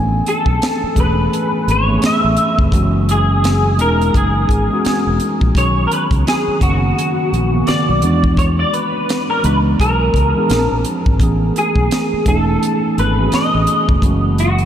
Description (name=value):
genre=R&B, neo-soul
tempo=85 BPM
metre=4/4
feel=swing 60% on 16ths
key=unclear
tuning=A4 = 440 Hz
part: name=tine electric piano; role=accompaniment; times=0.0-14.7 s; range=C#3 to A5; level=-18 LUFS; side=right 1 dB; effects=lush chorus
part: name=fingered electric bass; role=bass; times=0.0-14.7 s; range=E1 to E2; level=-17 LUFS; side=equal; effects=none
part: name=electric guitar through a small old amp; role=melody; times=0.3-14.7 s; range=F#4 to E5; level=-18 LUFS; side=left 1 dB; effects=ensemble chorus
part: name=tight funk drum kit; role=drums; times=0.3-14.7 s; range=hi-hat, kick drum, snare drum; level=-20 LUFS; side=equal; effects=none
room=wet cathedral reverb, RT60 6.3 s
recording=dreamy mix soaked in reverb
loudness=-13 LUFS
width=side -10 dB against mid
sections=0.0-14.7 A section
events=none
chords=0.0 Amaj9; 2.7 F#9sus4; 5.6 Bmaj9; 8.0 E9; 10.5 A#maj9; 11.2 Amaj9; 14.0 F#9